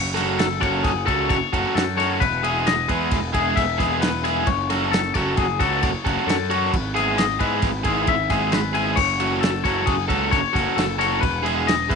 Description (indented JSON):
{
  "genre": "math rock and midwest emo",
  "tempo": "133 BPM",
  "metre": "5/4",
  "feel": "straight",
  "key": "unclear",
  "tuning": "A4 = 442 Hz",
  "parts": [
    { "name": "twangy electric guitar", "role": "arpeggios", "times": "0.0-12.0 s", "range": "G#4 to G#5", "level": "-23 LUFS", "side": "left 12 dB", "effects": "none" },
    { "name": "fuzz picked electric bass", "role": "bass", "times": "0.0-12.0 s", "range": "E1 to G#2", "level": "-27 LUFS", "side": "right 1 dB", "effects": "overdrive" },
    { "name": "overdriven electric guitar", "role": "riff", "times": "0.1-12.0 s", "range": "F#3 to A4", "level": "-23 LUFS", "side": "right 2 dB", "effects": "none" },
    { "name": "loose indie drum kit", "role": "drums", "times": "0.2-12.0 s", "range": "crash cymbal, kick drum, ride cymbal, snare drum", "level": "-26 LUFS", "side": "right 1 dB", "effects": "none" }
  ],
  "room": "light reverb, studio reverb",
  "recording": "1960s-style stereo, nothing above 10.4 kHz",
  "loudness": "-18 LUFS",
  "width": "side -5 dB against mid",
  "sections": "0.0-12.0 A section",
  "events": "none",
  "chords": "0.0 F#m; 2.2 E; 4.5 F#m; 6.7 E/G#; 9.0 F#m; 11.2 Emaj7"
}